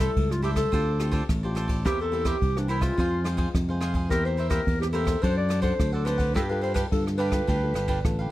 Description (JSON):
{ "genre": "samba and choro", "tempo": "107 BPM", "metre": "4/4", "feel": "straight", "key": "C major", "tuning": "A4 = 440 Hz", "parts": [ { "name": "warm clarinet", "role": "melody", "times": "0.0-8.3 s", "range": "D4 to D5", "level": "-28 LUFS", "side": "equal", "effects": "none" }, { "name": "cavaquinho", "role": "accompaniment", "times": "0.0-8.3 s", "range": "D4 to F#5", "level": "-34 LUFS", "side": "right 3 dB", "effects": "none" }, { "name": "nylon-string guitar", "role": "accompaniment", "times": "0.0-8.3 s", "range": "G2 to A4", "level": "-34 LUFS", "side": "left 3 dB", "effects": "none" }, { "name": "fingered electric bass", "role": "bass", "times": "0.0-8.3 s", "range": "G1 to G2", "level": "-27 LUFS", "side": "equal", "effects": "none" }, { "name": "jazz brush drum kit", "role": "drums", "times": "0.0-8.2 s", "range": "kick drum, ride cymbal, rim click", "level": "-29 LUFS", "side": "equal", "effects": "none" } ], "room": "small room ambience", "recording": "dry, close 1970s-style studio recording", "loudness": "-23 LUFS", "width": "side -15 dB against mid", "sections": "0.0-8.3 A section", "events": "none", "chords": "0.0 C6; 0.7 Dm7; 1.9 C7/E; 3.0 Fm; 4.1 C7/E; 5.2 D7/F#; 6.4 G9" }